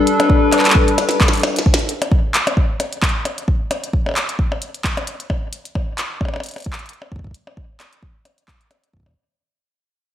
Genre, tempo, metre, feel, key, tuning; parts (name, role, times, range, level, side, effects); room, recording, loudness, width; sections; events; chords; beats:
IDM; 132 BPM; 4/4; swing 56% on 16ths; A4 = 436 Hz
hollow soft pad; sustained chords; 0.0-1.9 s; G3 to B4; -16 LUFS; left 2 dB; chorus
glitchy drum kit; drums; 0.1-9.1 s; handclaps, hi-hat, percussion blips, snare drum; -20 LUFS; left 1 dB; studio reverb, analog delay
electronic kick drum; drums; 0.3-9.2 s; -18 LUFS; equal; studio reverb
moderate plate reverb, RT60 1.2 s; dreamy mix soaked in reverb; -16 LUFS; side -10 dB against mid
0.0-1.9 A section; 1.9-9.2 B section
drum fill 1.0-1.9; fade-out 1.9-9.2
0.0 G; 1.9 N.C.
| 0.07 0.53 0.98 1.43 | 1.89 2.34 2.80 3.25 | 3.71 4.16 4.62 5.07 | 5.53 5.98 6.43 6.89 | 7.34 7.80 8.25 8.71